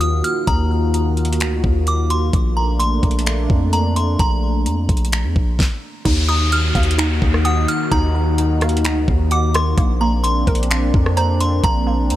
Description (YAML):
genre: hip hop, atmospheric cloud-rap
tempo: 129 BPM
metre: 4/4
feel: half-time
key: unclear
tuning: A4 = 439 Hz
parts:
  - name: delicate synth tine bell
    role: melody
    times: 0.0-12.2 s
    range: Bb5 to F6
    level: -24 LUFS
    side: equal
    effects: chorus, digital delay
  - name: dark analog pad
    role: sustained chords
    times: 0.0-12.2 s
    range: Eb3 to Gb4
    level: -23 LUFS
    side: equal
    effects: chorus, sidechain pumping
  - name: long sustained 808-style bass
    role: bass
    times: 0.0-12.2 s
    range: Bb1 to F2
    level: -18 LUFS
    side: equal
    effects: none
  - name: smooth R&B drum kit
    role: drums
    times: 0.0-12.2 s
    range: crash cymbal, finger snaps, hi-hat, kick drum, rim click, snare drum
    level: -20 LUFS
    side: equal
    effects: none
  - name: hollow square pluck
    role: arpeggios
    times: 6.1-12.2 s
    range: Bb3 to Gb5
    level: -27 LUFS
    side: right 3 dB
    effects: chorus, digital delay
  - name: downlifter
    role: sound effects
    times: 6.1-9.8 s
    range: none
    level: -27 LUFS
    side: equal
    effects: none
room: digital ambience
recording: none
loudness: -15 LUFS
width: side -14 dB against mid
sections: 0.0-6.1 A section; 6.1-12.2 B section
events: stop 5.6-6.1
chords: 0.0 Ebmadd9; 2.3 Bbmaj7; 6.1 Ebmadd9; 9.8 Bbadd9